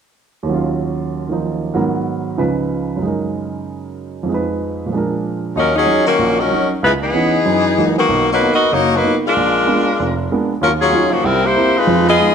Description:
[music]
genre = jazz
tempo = 190 BPM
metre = 4/4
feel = swing 61% on 8ths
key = Eb minor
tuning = A4 = 440 Hz
[part]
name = warm upright piano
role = accompaniment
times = 0.4-12.3 s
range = F1 to Cb5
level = -18 LUFS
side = right 3 dB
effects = none
[part]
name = bright saxophone section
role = melody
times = 5.6-12.3 s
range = Db3 to Eb5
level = -14 LUFS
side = left 2 dB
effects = none
[sound]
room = moderate scoring stage reverb, RT60 1.7 s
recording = close, detailed microphones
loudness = -14 LUFS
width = side -7 dB against mid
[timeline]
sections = 0.5-5.6 A section; 5.6-12.3 B section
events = none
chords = 0.5 Ebm7; 1.8 Abm7; 2.4 Db7; 3.0 Gb6; 4.3 Fm7b5; 4.9 Bb7; 5.6 Ebm7; 6.8 Dbm9; 7.5 Gb13; 8.1 Bmaj7; 9.3 Bb7b9; 10.6 Ebm9; 11.2 C7

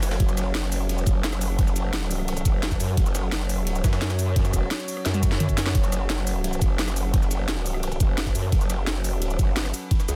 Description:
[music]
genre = dark technical drum and bass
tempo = 173 BPM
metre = 4/4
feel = straight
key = F# minor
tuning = A4 = 440 Hz
[part]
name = metallic inharmonic drone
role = sustained chords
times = 0.0-10.2 s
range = F#3 to C#5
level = -35 LUFS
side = equal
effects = chorus, built-in reverb, sidechain pumping
[part]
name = growl bass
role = bass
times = 0.0-10.2 s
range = E1 to F#2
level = -28 LUFS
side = equal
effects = chorus, overdrive
[part]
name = drum and bass drum kit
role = drums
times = 0.0-10.2 s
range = hi-hat, rim click, shaker, snare drum, toms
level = -32 LUFS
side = equal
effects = overdrive
[part]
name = jungle sampler-style drum kit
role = drums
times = 0.0-10.2 s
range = hi-hat, ride cymbal, snare drum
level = -41 LUFS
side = equal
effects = high-pass filter on cymbals, high-pass filter on snare, high-pass filter on hats
[part]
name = electronic kick drum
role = drums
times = 0.2-10.0 s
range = none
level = -24 LUFS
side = equal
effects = overdrive
[sound]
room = digital ambience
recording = dense, heavily limited modern master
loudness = -24 LUFS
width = mono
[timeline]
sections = 0.0-10.2 A section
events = drum fill 5.1-5.7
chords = 0.0 F#m

